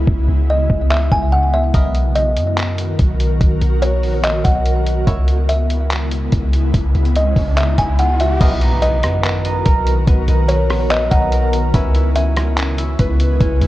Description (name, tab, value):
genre	hip hop, atmospheric cloud-rap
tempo	144 BPM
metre	4/4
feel	half-time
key	B major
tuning	A4 = 439 Hz
part	kalimba	melody	0.0-13.4 s	C#5 to G#5	-21 LUFS	equal	tape echo
part	ethereal airy pad	sustained chords	0.0-13.7 s	C#3 to A#4	-23 LUFS	left 1 dB	ensemble chorus, built-in reverb, tremolo, sidechain pumping
part	warm 808-style bass	bass	0.0-13.7 s	A#1 to F#2	-16 LUFS	equal	none
part	bluegrass banjo	texture	0.0-13.7 s	B3 to D#5	-31 LUFS	equal	none
part	lo-fi sampler-style drum kit	drums	0.1-13.7 s	crash cymbal, handclaps, hi-hat, kick drum, rim click	-18 LUFS	equal	none
part	riser and impact	sound effects	6.4-10.1 s	none	-28 LUFS	equal	none
part	concert harp	arpeggios	8.4-13.7 s	B3 to B4	-24 LUFS	right 1 dB	tape echo
room	little or no reverb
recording	worn, warbling old tape, cassette tape, warbly pitch drift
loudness	-13 LUFS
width	side -16 dB against mid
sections	0.0-8.4 A section; 8.4-13.7 B section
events	break 0.0-1.7; riser 6.4-8.4; impact 8.4-10.1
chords	0.0 C#m7; 1.7 Bmaj7; 5.1 C#m7; 8.4 Bmaj7; 11.7 C#m7